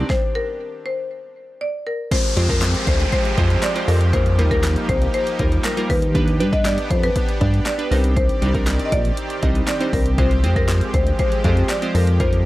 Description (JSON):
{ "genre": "dance-pop", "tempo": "119 BPM", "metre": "4/4", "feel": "straight", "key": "unclear", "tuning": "A4 = 442 Hz", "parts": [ { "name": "glassy digital keys", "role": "accompaniment", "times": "0.0-12.3 s", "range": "G3 to Eb5", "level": "-26 LUFS", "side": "right 2 dB", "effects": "chorus, sidechain pumping" }, { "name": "supersaw pad", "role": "sustained chords", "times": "0.0-12.5 s", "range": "Eb3 to D5", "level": "-28 LUFS", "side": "right 1 dB", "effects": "sidechain pumping" }, { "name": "chorused synth bass", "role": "bass", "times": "0.0-12.5 s", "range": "Bb1 to G2", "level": "-18 LUFS", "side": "equal", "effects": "sidechain pumping" }, { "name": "marimba with hard mallets", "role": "melody", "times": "0.1-12.5 s", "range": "Bb4 to Eb5", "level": "-25 LUFS", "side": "left 2 dB", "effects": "none" }, { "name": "deep house drum kit", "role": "drums", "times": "0.1-12.4 s", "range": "crash cymbal, handclaps, hi-hat, kick drum, snare drum", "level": "-21 LUFS", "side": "equal", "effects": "none" }, { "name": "downlifter", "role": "sound effects", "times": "2.1-6.1 s", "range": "none", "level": "-28 LUFS", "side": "equal", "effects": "none" } ], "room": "digital ambience", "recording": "dry, gritty hardware recording", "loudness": "-16 LUFS", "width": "side -17 dB against mid", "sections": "0.0-2.1 A section; 2.1-12.5 B section", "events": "stop 0.1-2.1", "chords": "0.0 Cmadd9; 2.1 Fmadd9; 4.1 Ebadd9; 6.2 G; 7.9 Cmadd9; 10.2 Fmadd9", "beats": "| 0.10 0.60 1.11 1.61 | 2.12 2.62 3.12 3.63 | 4.13 4.64 5.14 5.64 | 6.15 6.65 7.16 7.66 | 8.17 8.67 9.18 9.68 | 10.18 10.69 11.19 11.70 | 12.20" }